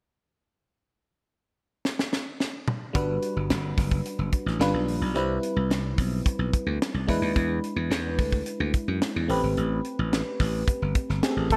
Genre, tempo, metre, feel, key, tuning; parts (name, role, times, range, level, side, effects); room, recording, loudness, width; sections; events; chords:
polished 1980s jazz-funk pop; 109 BPM; 4/4; straight; G major; A4 = 439 Hz
tight funk drum kit; drums; 1.9-11.6 s; hi-hat, kick drum, snare drum, toms; -30 LUFS; equal; gated reverb
FM electric piano; accompaniment; 2.9-11.6 s; G3 to B4; -32 LUFS; equal; lush chorus
slap bass; bass; 3.0-11.6 s; F1 to F#2; -30 LUFS; equal
fat analog lead; melody; 11.5-11.6 s; A4; -22 LUFS; equal; chorus
light reverb, small room ambience; bright 1980s-style digital production; -27 LUFS; mono
0.7-2.9 A section; 2.9-11.6 B section
drum fill 1.8-2.9
0.7 N.C.; 2.9 Gmaj7; 4.6 G7; 5.2 Cmaj7; 7.1 E7; 9.3 Am9